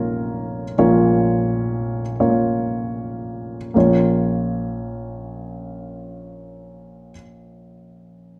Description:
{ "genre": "folk", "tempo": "36-46 BPM (dotted quarters)", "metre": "6/8", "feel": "straight", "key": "Bb minor", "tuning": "A4 = 440 Hz", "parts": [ { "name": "dark grand piano", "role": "solo", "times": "0.0-8.4 s", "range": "Bb1 to Db5", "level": "-21 LUFS", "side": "equal", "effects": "slapback echo" } ], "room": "moderate large studio reverb, RT60 1.0 s", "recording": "dark, warm production", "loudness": "-20 LUFS", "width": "mono", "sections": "0.0-3.8 A section; 3.8-7.1 B section", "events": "slowing down 0.0-3.8", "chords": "0.0 Bbm" }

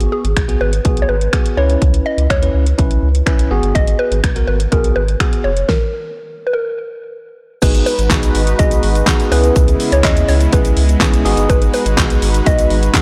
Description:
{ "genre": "dance-pop", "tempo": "124 BPM", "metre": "4/4", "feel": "straight", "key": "G# minor", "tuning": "A4 = 438 Hz", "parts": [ { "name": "mallet-like synth pluck", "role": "melody", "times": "0.0-13.0 s", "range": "F#4 to D#5", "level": "-22 LUFS", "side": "equal", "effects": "chorus, phaser, tape echo" }, { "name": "bell-like tine electric piano", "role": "accompaniment", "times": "0.0-13.0 s", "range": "B3 to B4", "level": "-24 LUFS", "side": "equal", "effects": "sidechain pumping" }, { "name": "warm sub bass", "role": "bass", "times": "0.0-12.9 s", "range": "E#1 to D#2", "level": "-18 LUFS", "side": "equal", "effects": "sidechain pumping" }, { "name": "pop drum kit", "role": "drums", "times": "0.0-13.0 s", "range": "crash cymbal, finger snaps, handclaps, hi-hat, kick drum, snare drum", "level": "-18 LUFS", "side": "equal", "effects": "soft clipping on snare" }, { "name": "soft supersaw", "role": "sustained chords", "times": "7.6-13.0 s", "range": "C#3 to B4", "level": "-24 LUFS", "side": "equal", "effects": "sidechain pumping" }, { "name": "tube shaker", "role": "percussion", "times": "7.6-13.0 s", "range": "none", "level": "-38 LUFS", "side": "equal", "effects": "none" } ], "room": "light reverb", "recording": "blown-out, overdriven recording, overdrive", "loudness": "-14 LUFS", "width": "mono", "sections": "0.0-7.6 A section; 7.6-13.0 B section", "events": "stop 5.7-7.6", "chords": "0.0 G#m7; 1.6 C#m7; 3.5 G#m7; 5.7 N.C.; 7.6 G#m7; 9.3 C#m7; 11.3 G#m7" }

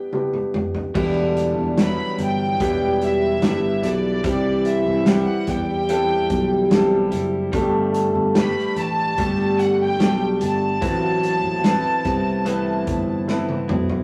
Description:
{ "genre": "pop ballad", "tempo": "73 BPM", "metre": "4/4", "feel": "straight", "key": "unclear", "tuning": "A4 = 442 Hz", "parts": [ { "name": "warm studio violin section", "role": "melody", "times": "0.0-13.7 s", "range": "D5 to B5", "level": "-28 LUFS", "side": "equal", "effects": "none" }, { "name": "clear baby grand piano", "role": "accompaniment", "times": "0.0-14.0 s", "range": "E2 to B4", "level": "-27 LUFS", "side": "equal", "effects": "none" }, { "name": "loose indie drum kit", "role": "drums", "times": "0.1-14.0 s", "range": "crash cymbal, hi-hat, kick drum, snare drum, toms", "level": "-26 LUFS", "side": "equal", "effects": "none" }, { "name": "mellow French horn section", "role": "second line", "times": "0.9-13.7 s", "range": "D3 to A4", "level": "-26 LUFS", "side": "equal", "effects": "none" }, { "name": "direct-recorded clean electric guitar", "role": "arpeggios", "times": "0.9-14.0 s", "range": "E2 to G4", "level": "-30 LUFS", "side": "equal", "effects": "none" }, { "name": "sustaining fretless electric bass", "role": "bass", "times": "1.0-14.0 s", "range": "E1 to E2", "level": "-27 LUFS", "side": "equal", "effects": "none" } ], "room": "wet studio reverb, RT60 0.7 s", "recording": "rough rehearsal-room recording, tube saturation, small room ambience", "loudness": "-20 LUFS", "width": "mono", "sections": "1.0-14.0 A section", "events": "drum fill 0.1-1.0, 13.3-14.0", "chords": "0.0 Em7; 4.2 C; 7.5 Gsus2; 10.8 Amadd9" }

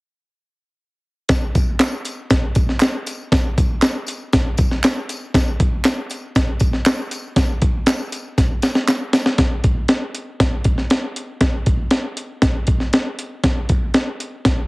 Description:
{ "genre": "soul", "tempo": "119 BPM", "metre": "4/4", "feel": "straight", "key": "none", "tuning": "none", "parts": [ { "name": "breakbeat sampler-style drum kit", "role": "drums", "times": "1.3-14.6 s", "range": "hi-hat, kick drum, snare drum", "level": "-16 LUFS", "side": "equal", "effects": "vintage 12-bit sampler grit" }, { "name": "tambourine and handclaps", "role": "percussion", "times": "1.3-9.3 s", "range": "none", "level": "-27 LUFS", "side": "right 2 dB", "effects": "none" } ], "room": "moderate spring reverb, RT60 1.3 s, studio ambience", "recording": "heavily compressed radio sound, multiband compression, cassette tape", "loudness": "-16 LUFS", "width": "side -25 dB against mid", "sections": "1.3-9.4 A section; 9.4-14.7 B section", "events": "drum fill 8.4-9.4", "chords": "none" }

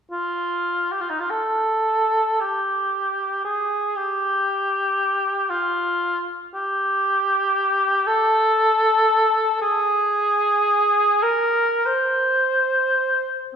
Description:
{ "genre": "classical, free, expressive piece for unaccompanied cor anglais", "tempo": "29-61 BPM", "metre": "3/4", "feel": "rubato", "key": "unclear", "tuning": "A4 = 440 Hz", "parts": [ { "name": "warm cor anglais", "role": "solo", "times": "0.1-13.4 s", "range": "Eb4 to C5", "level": "-18 LUFS", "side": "equal", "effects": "none" } ], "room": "wet scoring stage reverb, RT60 1.6 s", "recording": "recorded in a church or concert hall", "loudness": "-18 LUFS", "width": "side -7 dB against mid", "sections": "0.1-13.5 A section", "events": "none", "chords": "none" }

